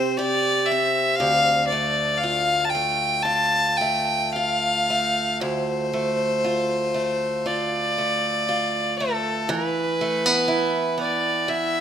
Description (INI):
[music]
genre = celtic folk, Celtic slow air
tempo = 59 BPM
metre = 4/4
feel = rubato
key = D dorian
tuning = A4 = 440 Hz
[part]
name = rich fiddle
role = melody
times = 0.0-11.8 s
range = A4 to A5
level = -21 LUFS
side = left 1 dB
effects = none
[part]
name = picked acoustic archtop guitar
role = accompaniment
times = 0.0-11.8 s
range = D2 to G4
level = -25 LUFS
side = right 2 dB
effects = none
[sound]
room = moderate scoring stage reverb, RT60 1.6 s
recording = minimal, uncompressed stereo recording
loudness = -20 LUFS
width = side -8 dB against mid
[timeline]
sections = 0.0-5.4 A section; 5.4-11.8 A section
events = none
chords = 0.0 C5; 1.2 Dm; 9.5 E5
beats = 0.18 | 1.19 2.20 3.25 4.34 | 5.41 6.44 7.46 8.48 | 9.49 10.49 11.48